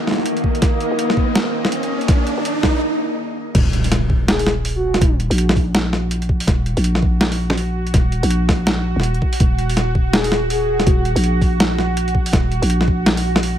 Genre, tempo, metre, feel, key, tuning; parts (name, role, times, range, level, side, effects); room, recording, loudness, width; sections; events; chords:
half-time drum and bass; 164 BPM; 4/4; swing 60% on 16ths, half-time; Eb minor; A4 = 443 Hz
bowed-like drone; sustained chords; 0.0-13.6 s; Eb3 to Eb5; -24 LUFS; right 1 dB; built-in reverb, sidechain pumping
growling 808-style bass; bass; 0.0-13.6 s; Eb1 to Bb1; -19 LUFS; equal; high-pass filter
riser and impact; sound effects; 0.2-5.0 s; -23 LUFS; right 1 dB
boom bap sampler-style drum kit; drums; 0.1-13.5 s; crash cymbal, hi-hat, snare drum; -20 LUFS; equal; overdrive
electronic kick drum; drums; 0.4-13.0 s; -17 LUFS; equal; overdrive
breathy flute-like synth lead; melody; 4.3-5.1, 10.1-11.0 s; Gb4 to Ab4; -24 LUFS; left 1 dB; lush chorus, digital delay
digital ambience; -15 LUFS; side -10 dB against mid
0.0-3.5 A section; 3.5-13.6 B section
build-up 0.0-3.5; riser 0.2-2.8; break 2.8-3.5; drop 3.5-13.6; impact 3.5-5.0
0.0 Ebm